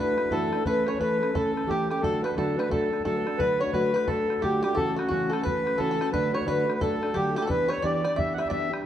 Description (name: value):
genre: celtic folk, Celtic hornpipe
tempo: 176 BPM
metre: 4/4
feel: swing 62% on 8ths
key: unclear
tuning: A4 = 440 Hz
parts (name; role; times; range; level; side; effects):
- accordion; melody; 0.0-8.7 s; F#4 to F#5; -27 LUFS; equal; none
- bluegrass banjo; second line; 0.0-8.7 s; F#4 to E5; -36 LUFS; equal; none
- mellow baroque flute; second line; 0.0-8.7 s; F#4 to E5; -33 LUFS; left 4 dB; none
- fingerpicked plugged-in steel-string acoustic guitar; accompaniment; 0.0-8.9 s; F#2 to A4; -28 LUFS; right 1 dB; none
- bodhran; percussion; 0.2-8.8 s; none; -36 LUFS; left 1 dB; none
room: wet stone room reverb, RT60 1.5 s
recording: band playing live in one room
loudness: -23 LUFS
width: side -10 dB against mid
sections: 0.0-8.9 A section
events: none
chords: 0.0 Dadd9; 0.7 A/E; 2.0 D; 4.8 F#m7/C#; 6.1 D; 7.5 Em7